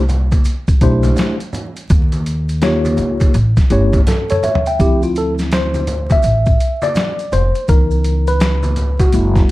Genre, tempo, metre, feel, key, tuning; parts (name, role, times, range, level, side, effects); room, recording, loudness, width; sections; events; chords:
hip hop, jazz-hop; 83 BPM; 4/4; swing 62% on 16ths; A4 = 440 Hz
upright bass; bass; 0.0-9.4 s; F1 to Eb2; -16 LUFS; equal
boom bap sampler-style drum kit; drums; 0.1-9.5 s; hi-hat, kick drum, snare drum, toms; -15 LUFS; equal
congas and maracas; percussion; 0.1-9.5 s; -27 LUFS; right 2 dB
tine electric piano; accompaniment; 0.8-9.5 s; E3 to G5; -17 LUFS; left 1 dB; overdrive, fast stereo tremolo
light reverb; dark, warm production, vinyl crackle; -12 LUFS; side -18 dB against mid
0.0-4.8 A section; 4.8-9.5 B section
drum fill 4.1-4.8; tine electric piano solo 4.8-9.5
0.0 C69; 1.9 Eb9; 3.3 A7; 4.8 Dm7; 7.7 C#m7